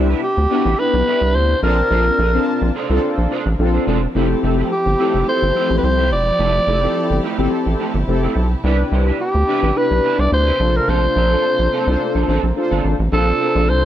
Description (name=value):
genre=funk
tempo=107 BPM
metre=4/4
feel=straight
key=F major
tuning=A4 = 436 Hz
part: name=mellow synth brass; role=accompaniment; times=0.0-13.8 s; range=B3 to A5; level=-21 LUFS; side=left 2 dB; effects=chorus
part: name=warm studio string section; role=sustained chords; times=0.0-13.8 s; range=C3 to E5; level=-28 LUFS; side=left 1 dB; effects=none
part: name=electric guitar at the edge of break-up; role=riff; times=0.0-13.7 s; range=A3 to D5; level=-26 LUFS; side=right 6 dB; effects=ensemble chorus
part: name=rubbery square bass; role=bass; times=0.0-13.8 s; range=E1 to D2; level=-18 LUFS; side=equal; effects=none
part: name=growling alto saxophone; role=melody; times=0.2-13.8 s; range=G4 to D5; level=-18 LUFS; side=equal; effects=none
room=studio reverb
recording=none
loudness=-14 LUFS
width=side -11 dB against mid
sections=0.0-13.1 A section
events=none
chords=0.0 Cmaj9; 1.6 Bbmaj9; 4.2 Fmaj9; 8.6 Cmaj9; 10.6 Bbmaj9